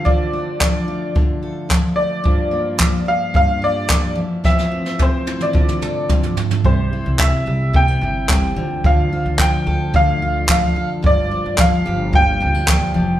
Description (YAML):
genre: acoustic pop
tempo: 109 BPM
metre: 4/4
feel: straight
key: D minor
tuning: A4 = 442 Hz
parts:
  - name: clear upright piano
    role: melody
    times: 0.0-13.2 s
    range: C5 to G5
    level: -20 LUFS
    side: equal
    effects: none
  - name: picked steel-string acoustic guitar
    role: accompaniment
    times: 0.0-13.2 s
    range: G2 to A4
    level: -22 LUFS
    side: left 2 dB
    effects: none
  - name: nylon-string guitar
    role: arpeggios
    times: 0.0-13.2 s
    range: E3 to E4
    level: -29 LUFS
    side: right 3 dB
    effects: none
  - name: jazz brush drum kit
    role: drums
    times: 0.1-12.8 s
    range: handclaps, kick drum, snare drum, toms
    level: -17 LUFS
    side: equal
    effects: none
  - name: upright bass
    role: bass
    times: 6.6-13.2 s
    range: F1 to D2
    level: -22 LUFS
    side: equal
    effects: none
room: moderate large studio reverb, RT60 0.9 s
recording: band playing live in one room, lossy compression artefacts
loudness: -15 LUFS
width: side -12 dB against mid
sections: 0.0-6.7 A section; 6.7-13.2 B section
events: drum fill 4.5-6.7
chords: 0.0 Dm; 2.3 Gm7; 4.2 Fmaj7; 5.6 Dm7; 6.7 C; 8.6 Dm; 11.0 Gm7